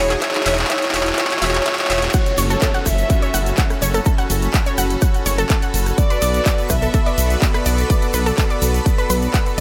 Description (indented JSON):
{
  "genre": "progressive house",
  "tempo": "125 BPM",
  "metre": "4/4",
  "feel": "straight",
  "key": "F# minor",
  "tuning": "A4 = 440 Hz",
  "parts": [
    { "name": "warm velvety synth lead", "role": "melody", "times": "0.0-7.3 s", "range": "C#5 to E5", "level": "-27 LUFS", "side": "equal", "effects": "chorus, delay" },
    { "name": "clear studio violin section", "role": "second line", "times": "0.0-7.3 s", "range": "C#5 to E5", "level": "-31 LUFS", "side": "equal", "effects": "none" },
    { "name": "supersaw pad", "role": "sustained chords", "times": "0.0-9.6 s", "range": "B3 to D5", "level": "-27 LUFS", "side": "equal", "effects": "sidechain pumping" },
    { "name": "analog pluck", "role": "arpeggios", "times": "0.0-9.6 s", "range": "G#4 to F#6", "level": "-28 LUFS", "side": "equal", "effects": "chorus, sidechain pumping, delay" },
    { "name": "dark detuned saw bass", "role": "bass", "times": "0.0-9.6 s", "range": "E1 to B1", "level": "-23 LUFS", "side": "equal", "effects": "sidechain pumping" },
    { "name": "riser and downlifter", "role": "sound effects", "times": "0.0-6.0 s", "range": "none", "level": "-33 LUFS", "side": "equal", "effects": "none" },
    { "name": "big-room dance drum kit", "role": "drums", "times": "0.1-9.6 s", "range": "handclaps, hi-hat, rim click", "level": "-25 LUFS", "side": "equal", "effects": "sidechain pumping on hats" },
    { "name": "electronic kick drum", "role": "drums", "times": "0.2-9.4 s", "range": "none", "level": "-20 LUFS", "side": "equal", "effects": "high-pass filter on kick" },
    { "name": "tube shaker", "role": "percussion", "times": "2.1-9.6 s", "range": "none", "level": "-32 LUFS", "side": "equal", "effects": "none" },
    { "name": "twinkling granular texture", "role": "texture", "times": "2.8-9.6 s", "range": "B5", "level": "-37 LUFS", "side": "equal", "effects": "built-in reverb, sidechain pumping" }
  ],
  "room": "light reverb, digital ambience",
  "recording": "none",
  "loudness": "-18 LUFS",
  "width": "mono",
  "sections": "0.0-2.1 A section; 2.1-9.6 B section",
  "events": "build-up 0.0-2.1; drum fill 0.0-2.1; riser 0.0-2.1; drop 2.1-9.6",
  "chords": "0.0 Eadd9; 2.1 F#m; 6.0 Bm7",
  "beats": "| 0.22 0.70 1.18 1.66 | 2.14 2.62 3.10 3.58 | 4.06 4.54 5.02 5.50 | 5.98 6.46 6.94 7.42 | 7.90 8.38 8.86 9.34"
}